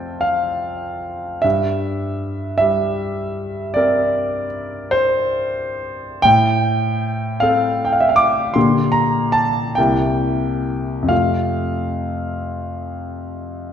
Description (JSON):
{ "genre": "classical, romantic nocturne for solo piano", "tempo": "40-53 BPM (dotted quarters)", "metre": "12/8", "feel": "rubato", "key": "F major", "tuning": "A4 = 441 Hz", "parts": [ { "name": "warm concert grand piano", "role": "solo", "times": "0.0-13.7 s", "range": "C2 to D6", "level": "-17 LUFS", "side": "equal", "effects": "none" } ], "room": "wet recital hall reverb, RT60 1.4 s", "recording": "none", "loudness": "-16 LUFS", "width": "side -8 dB against mid", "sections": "0.0-13.7 A section", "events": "none", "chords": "0.0 F; 1.4 C7/G; 6.2 Am7; 8.6 Gm/Bb; 9.8 C7; 11.1 F", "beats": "0.23 | 1.44 2.60 3.76 4.94 | 6.25 7.42 8.56 9.77 | 11.10 12.57" }